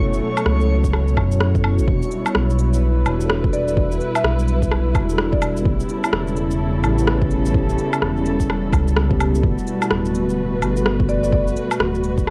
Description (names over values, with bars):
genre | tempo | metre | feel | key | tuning
future garage | 127 BPM | 4/4 | swing 61% on 16ths | E dorian | A4 = 440 Hz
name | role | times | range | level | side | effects
mellow tine electric piano | accompaniment | 0.0-12.3 s | F#3 to B4 | -29 LUFS | equal | phaser, sidechain pumping, cassette tape, tape echo
dark studio string section | sustained chords | 0.0-12.3 s | B2 to C#5 | -26 LUFS | equal | sidechain pumping, cassette tape
dark detuned saw bass | bass | 0.0-12.3 s | D1 to F#2 | -23 LUFS | equal | sidechain pumping
backwards swelling texture | texture | 0.0-1.9 s | C#6 | -38 LUFS | equal | built-in reverb, cassette tape
electronic shaker, woodblock, rim click and cabasa | drums | 0.1-12.3 s | none | -25 LUFS | equal | studio reverb, cassette tape
electronic kick drum | drums | 0.8-12.3 s | none | -24 LUFS | equal | studio reverb, cassette tape
marimba with soft mallets | melody | 3.5-5.7, 11.1-11.7 s | D5 to E5 | -28 LUFS | equal | cassette tape, tape echo
room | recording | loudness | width
little or no reverb | home recording on cassette | -19 LUFS | mono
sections
0.0-1.9 A section; 1.9-12.3 B section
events
none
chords
0.0 A69/F#; 1.9 Em7; 5.7 A7; 9.4 Gmaj7